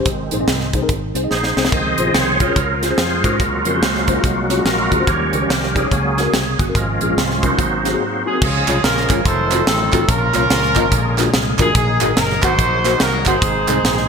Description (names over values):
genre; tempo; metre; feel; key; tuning
uptempo gospel; 144 BPM; 4/4; swing 62% on 8ths; Db major; A4 = 440 Hz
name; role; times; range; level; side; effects
mellow tine electric piano; accompaniment; 0.0-14.1 s; Ab2 to Gb5; -22 LUFS; left 2 dB; ensemble chorus
fingered electric bass; bass; 0.0-14.1 s; F1 to Ab2; -23 LUFS; equal; none
bright tonewheel organ; sustained chords; 0.1-14.1 s; Db3 to Eb5; -20 LUFS; right 1 dB; fast rotary speaker, chorus vibrato
crisp fusion drum kit; drums; 0.1-14.0 s; crash cymbal, hi-hat, kick drum, snare drum, splash cymbal; -19 LUFS; right 1 dB; none
warm horn section; melody; 8.3-14.1 s; C4 to C5; -18 LUFS; right 1 dB; digital delay
group handclap; percussion; 8.7-13.8 s; none; -27 LUFS; right 10 dB; none
room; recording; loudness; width
moderate lush hall reverb, RT60 1.8 s, small room ambience; bright 1980s-style digital production; -14 LUFS; side -6 dB against mid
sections
0.0-8.4 A section; 8.4-14.1 B section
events
tonewheel organ solo 0.0-8.4; drum fill 1.3-1.7; break 8.0-8.4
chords
0.1 Ab; 1.7 Dbmaj7; 3.4 Gbmaj7/Db; 5.1 Eb7; 5.9 Gb/Db; 6.7 Db/Ab; 7.6 Ab7; 8.4 Db; 9.3 F7b9; 10.1 Bbm; 10.9 Bb7b13; 11.8 Ebm; 13.4 Ab